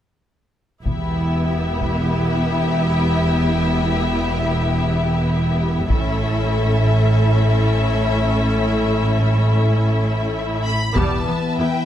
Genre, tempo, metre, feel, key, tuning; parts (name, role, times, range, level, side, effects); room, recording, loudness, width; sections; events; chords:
cinematic, epic orchestral film score; free time; A4 = 439 Hz
rich symphonic violin section; second line; 0.9-11.8 s; G4 to E5; -24 LUFS; left 5 dB
clear symphonic viola section; accompaniment; 0.9-11.7 s; G3 to E4; -24 LUFS; left 1 dB
rich symphonic cello section; bass; 0.9-11.7 s; E2 to A2; -22 LUFS; right 1 dB
warm studio double bass section; bass; 0.9-11.2 s; E1 to A1; -20 LUFS; right 1 dB
taiko ensemble; drums; 0.9-2.1, 5.9-7.1, 11.0-11.8 s; -23 LUFS; equal
rich symphonic violin section; melody; 10.6-11.8 s; G5 to B5; -25 LUFS; left 3 dB
mellow French horn section; sustained chords; 11.0-11.8 s; E3 to B3; -23 LUFS; left 3 dB
moderate scoring stage reverb, RT60 1.6 s; -16 LUFS; side -10 dB against mid
0.8-11.0 A section
0.8 Em; 5.9 A; 11.0 Em